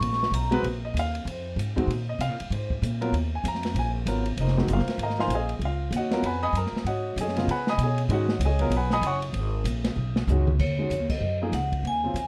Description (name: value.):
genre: modal jazz.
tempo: 193 BPM.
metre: 4/4.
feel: swing 60% on 8ths.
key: Bb phrygian.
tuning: A4 = 439 Hz.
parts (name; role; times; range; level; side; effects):
vibraphone with medium hard mallets; melody; 0.0-0.6, 10.6-12.3 s; Db5 to C#6; -31 LUFS; equal; plate reverb.
upright bass; bass; 0.0-12.3 s; F1 to Db3; -29 LUFS; equal; none.
open jazz drum kit; drums; 0.0-12.2 s; crash cymbal, hi-hat, kick drum, ride cymbal, snare drum, toms; -35 LUFS; equal; none.
warm grand piano; accompaniment; 0.5-12.1 s; Db3 to Eb6; -31 LUFS; equal; none.
room: little or no reverb.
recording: dark, warm production.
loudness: -26 LUFS.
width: mono.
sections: 0.6-10.6 A section; 10.6-12.3 B section.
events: drum fill 10.0-10.6; band accent 11.1.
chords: 0.0 G#m11; 0.6 Bb9sus4; 5.6 Db9sus4; 10.6 Ebm11.